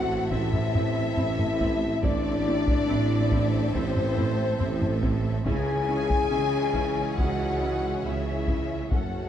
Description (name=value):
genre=cinematic, epic orchestral film score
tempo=70 BPM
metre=4/4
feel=straight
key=unclear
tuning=A4 = 440 Hz
part: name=rich studio violin section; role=melody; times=0.0-9.3 s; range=C5 to G#5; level=-36 LUFS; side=left 4 dB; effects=none
part: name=mellow hollow silver concert flute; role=second line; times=0.0-9.3 s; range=C5 to G#5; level=-35 LUFS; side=left 1 dB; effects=none
part: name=warm symphonic violin section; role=second line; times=0.0-9.3 s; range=C5 to G#5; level=-38 LUFS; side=left 3 dB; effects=none
part: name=mellow trombone section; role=sustained chords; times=0.0-9.3 s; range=C#3 to C4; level=-36 LUFS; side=right 4 dB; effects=none
part: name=rich symphonic string section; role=sustained chords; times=0.0-9.3 s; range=C4 to E5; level=-36 LUFS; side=left 1 dB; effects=none
part: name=warm French horn section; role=sustained chords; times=0.0-9.3 s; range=C4 to G#4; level=-30 LUFS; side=left 5 dB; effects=none
part: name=bright symphonic cello section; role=bass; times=0.0-9.3 s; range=F#2 to C#3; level=-33 LUFS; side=right 2 dB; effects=none
part: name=clear symphonic double bass section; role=bass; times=0.0-9.3 s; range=F#1 to C#2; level=-32 LUFS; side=right 2 dB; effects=none
part: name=mellow tuba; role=bass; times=0.0-9.3 s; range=F#1 to C#2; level=-33 LUFS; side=right 2 dB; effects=none
part: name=rich symphonic viola section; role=accompaniment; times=0.3-9.0 s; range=C4 to A4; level=-37 LUFS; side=right 1 dB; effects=none
part: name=taiko ensemble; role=drums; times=0.3-9.3 s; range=none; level=-29 LUFS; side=equal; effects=none
room=wet scoring stage reverb, RT60 1.9 s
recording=dark, warm production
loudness=-23 LUFS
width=side -10 dB against mid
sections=0.0-9.3 A section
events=none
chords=0.0 Am; 5.5 C#m